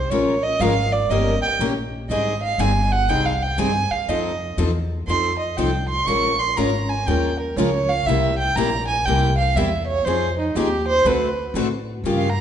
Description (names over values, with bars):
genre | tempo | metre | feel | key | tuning
acoustic string swing (jazz manouche) | 121 BPM | 4/4 | swing 65% on 8ths | F minor | A4 = 441 Hz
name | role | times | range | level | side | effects
warm violin | second line | 0.0-12.4 s | Eb4 to Db6 | -21 LUFS | right 3 dB | none
upright bass | bass | 0.0-12.4 s | G1 to A2 | -24 LUFS | left 1 dB | none
picked steel-string acoustic guitar | accompaniment | 0.1-12.3 s | C3 to Bb4 | -25 LUFS | left 7 dB | none
picked steel-string acoustic guitar | accompaniment | 0.1-12.3 s | C3 to Bb4 | -28 LUFS | right 5 dB | none
room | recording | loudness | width
wet recital hall reverb, RT60 1.7 s | recorded in a church or concert hall, nothing above 10.5 kHz | -18 LUFS | side -9 dB against mid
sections
0.0-12.4 A section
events
violin solo 0.0-12.4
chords
0.1 Bbm7; 1.1 Eb7; 2.1 Abmaj7; 4.1 F7; 6.1 Bbm7; 8.1 C7; 10.1 Fm7; 11.1 D7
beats
| 0.10 0.60 1.10 1.60 | 2.10 2.59 3.09 3.59 | 4.09 4.58 5.08 5.58 | 6.08 6.57 7.07 7.57 | 8.06 8.56 9.06 9.56 | 10.05 10.55 11.05 11.55 | 12.04